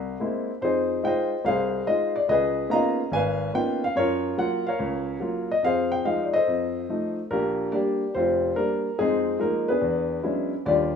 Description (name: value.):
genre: solo jazz.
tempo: 144 BPM.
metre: 4/4.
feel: swing 68% on 8ths.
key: unclear.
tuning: A4 = 440 Hz.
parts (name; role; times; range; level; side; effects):
warm baby grand piano; solo; 0.0-11.0 s; F1 to Bb5; -22 LUFS; left 1 dB; none.
room: small room ambience.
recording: rough home demo mix, studio reverb.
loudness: -22 LUFS.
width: side -6 dB against mid.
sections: 0.0-7.3 A section; 7.3-11.0 B section.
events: none.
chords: 0.0 C7b13; 0.6 Fm7; 2.3 Db13; 4.0 Gbmaj7; 5.6 Fm7; 6.5 F7; 7.3 Bb6; 9.0 Fm7; 9.8 E13.